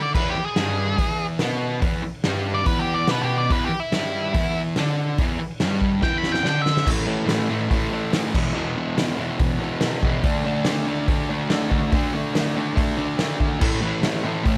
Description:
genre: garage rock duo or trio.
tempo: 142 BPM.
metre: 4/4.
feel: straight.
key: unclear.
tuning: A4 = 440 Hz.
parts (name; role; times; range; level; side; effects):
octave-fuzz lead guitar; melody; 0.0-6.9 s; E4 to B5; -27 LUFS; equal; distortion.
fuzz guitar; riff; 0.0-14.6 s; E2 to D4; -26 LUFS; equal; distortion.
raw garage drum kit; drums; 0.1-14.6 s; crash cymbal, hi-hat, kick drum, snare drum; -26 LUFS; equal; none.
room: light reverb.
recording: none.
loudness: -23 LUFS.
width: mono.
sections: 0.0-6.9 A section; 6.9-14.6 B section.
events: lead electric guitar solo 0.0-6.9; drum fill 6.0-6.9.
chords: 0.0 E5; 6.9 A5; 8.3 E5; 10.2 D5; 13.6 A5.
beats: | 0.14 0.56 0.98 1.40 | 1.82 2.24 2.66 3.08 | 3.50 3.92 4.34 4.76 | 5.18 5.60 6.02 6.44 | 6.86 7.28 7.71 8.13 | 8.55 8.97 9.39 9.81 | 10.23 10.66 11.08 11.50 | 11.92 12.34 12.77 13.19 | 13.61 14.03 14.45.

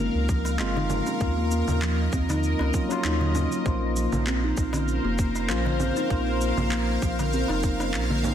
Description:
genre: organic downtempo.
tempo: 98 BPM.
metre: 4/4.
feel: swing 54% on 16ths.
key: Bb minor.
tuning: A4 = 440 Hz.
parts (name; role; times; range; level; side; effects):
tine electric piano; accompaniment; 0.0-8.3 s; Gb3 to C5; -30 LUFS; left 1 dB; medium stereo tremolo, sidechain pumping, low-pass filter, digital delay.
bowed-like drone; sustained chords; 0.0-8.3 s; Bb4 to F5; -31 LUFS; left 2 dB; built-in reverb, phaser, sidechain pumping.
kalimba; arpeggios; 0.0-8.3 s; F3 to Eb4; -30 LUFS; right 2 dB; low-pass filter, digital delay.
warm sub bass; bass; 0.0-8.3 s; F1 to Eb2; -27 LUFS; equal; sidechain pumping.
electronic kick drum; drums; 0.3-7.8 s; none; -27 LUFS; equal; none.
electronic shaker, handclaps and congas; drums; 0.3-8.3 s; none; -32 LUFS; right 2 dB; none.
darbuka; percussion; 0.5-8.2 s; none; -35 LUFS; left 2 dB; none.
room: light reverb.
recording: dense, heavily limited modern master.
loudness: -22 LUFS.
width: side -9 dB against mid.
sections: 0.0-8.3 A section.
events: filter sweep on kalimba 0.0-8.3.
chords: 0.0 Gbmaj7; 1.2 Ebm7; 3.7 Bbmadd9.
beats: 0.60 | 1.21 1.82 2.43 3.04 | 3.66 4.27 4.88 5.49 | 6.11 6.72 7.33 7.94.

